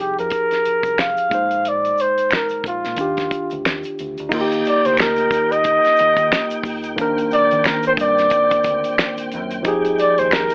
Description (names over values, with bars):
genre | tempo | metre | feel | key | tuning
R&B, neo-soul | 90 BPM | 4/4 | swing 57% on 16ths | unclear | A4 = 440 Hz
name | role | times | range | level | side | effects
trumpet with bucket mute | melody | 0.0-10.5 s | F4 to F5 | -19 LUFS | equal | none
tine electric piano | accompaniment | 0.0-10.5 s | Bb2 to C5 | -26 LUFS | equal | none
deep dub fingered electric bass | bass | 0.0-10.5 s | Bb1 to Eb3 | -37 LUFS | equal | none
damped 70s drum kit | drums | 0.0-10.5 s | crash cymbal, finger snaps, hi-hat, kick drum, snare drum | -25 LUFS | equal | none
tube shaker and finger snaps | percussion | 0.2-10.5 s | none | -30 LUFS | equal | none
tonewheel organ | sustained chords | 4.3-10.5 s | Bb2 to G5 | -31 LUFS | equal | fast rotary speaker, chorus vibrato
room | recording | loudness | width
light reverb | vinyl crackle, telephone sound | -18 LUFS | mono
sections
0.0-4.3 A section; 4.3-10.5 B section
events
none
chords
0.0 Fm9; 1.3 Bb9sus4; 3.0 Ebmaj9; 4.3 Ebmaj7; 9.6 Fm9